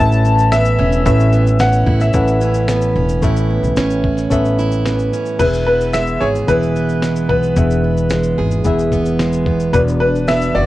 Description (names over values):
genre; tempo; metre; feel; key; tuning
acoustic pop; 111 BPM; 4/4; straight; E mixolydian; A4 = 439 Hz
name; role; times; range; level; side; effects
bright upright piano; melody; 0.0-10.7 s; B4 to A5; -18 LUFS; left 1 dB; none
picked plugged-in steel-string acoustic guitar; accompaniment; 0.0-10.7 s; E2 to G#4; -18 LUFS; right 3 dB; none
reed electric piano; accompaniment; 0.0-10.7 s; B3 to F#5; -22 LUFS; left 4 dB; none
upright bass; bass; 0.0-10.7 s; E1 to B1; -18 LUFS; equal; tube saturation
dusty soul sampler-style drum kit; drums; 0.1-10.5 s; crash cymbal, kick drum, shaker, snare drum; -21 LUFS; equal; none
room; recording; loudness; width
little or no reverb; worn, warbling old tape, cassette tape, warbly pitch drift; -13 LUFS; side -16 dB against mid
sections
0.0-3.2 A section; 3.2-5.4 B section; 5.4-10.7 C section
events
none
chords
0.0 Aadd9; 5.4 E; 9.7 Bm/E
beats
0.52 | 1.06 1.60 2.14 2.68 | 3.23 3.77 4.31 4.85 | 5.39 5.94 6.48 7.02 | 7.57 8.11 8.65 9.19 | 9.74 10.28